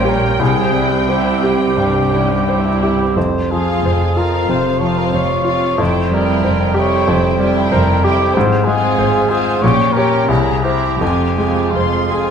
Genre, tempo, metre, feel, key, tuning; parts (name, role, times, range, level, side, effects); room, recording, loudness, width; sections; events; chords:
classical, romantic movement for piano and orchestra; 82-97 BPM; 4/4; rubato; F minor; A4 = 439 Hz
clear baby grand piano; melody; 0.0-12.3 s; C2 to Db5; -16 LUFS; equal
rich studio violin section; melody; 0.0-12.3 s; F5 to C6; -25 LUFS; left 2 dB
mellow cor anglais; second line; 0.0-12.3 s; F4 to Db5; -20 LUFS; right 1 dB
warm studio violin section; second line; 0.0-12.3 s; G3 to G4; -24 LUFS; left 3 dB
warm studio viola section; accompaniment; 0.0-12.3 s; C4 to E4; -25 LUFS; right 2 dB
warm studio cello section; bass; 0.0-12.3 s; F2 to C3; -26 LUFS; right 3 dB
warm studio double bass section; bass; 0.0-12.3 s; F1 to C2; -22 LUFS; right 2 dB
wet scoring stage reverb, RT60 1.6 s; minimal, uncompressed stereo recording; -13 LUFS; side -7 dB against mid
0.0-12.3 A section
0.4 C; 3.2 Fm; 8.4 Fm/Ab; 9.6 Gdim/Bb; 10.3 C7; 11.0 Fm